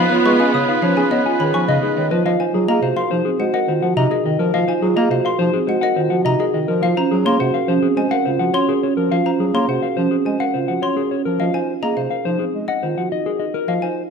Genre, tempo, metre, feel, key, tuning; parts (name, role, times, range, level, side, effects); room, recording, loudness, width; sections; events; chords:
classical, minimalist pattern music; 105 BPM; 4/4; straight; Ab mixolydian; A4 = 439 Hz
mellow electric guitar; melody; 0.0-14.0 s; Ab4 to Ab5; -22 LUFS; left 10 dB
clear oboe; second line; 0.0-2.1 s; Cb5; -23 LUFS; right 5 dB
warm bass clarinet; accompaniment; 0.0-13.8 s; C3 to Db4; -22 LUFS; equal
rich symphonic string section; sustained chords; 0.0-2.1 s; Cb4 to F4; -21 LUFS; left 1 dB
marimba with soft mallets; arpeggios; 0.0-14.0 s; C4 to Db5; -20 LUFS; right 6 dB
xylophone with rubber mallets; arpeggios; 0.0-14.0 s; Eb5 to Eb6; -26 LUFS; left 4 dB
moderate recital hall reverb, RT60 1.6 s; close, detailed microphones; -16 LUFS; side -6 dB against mid
0.0-2.3 A section; 2.3-14.1 B section
0.0 Db7; 2.3 Ab13; 6.8 Gbmaj9; 11.4 Ab69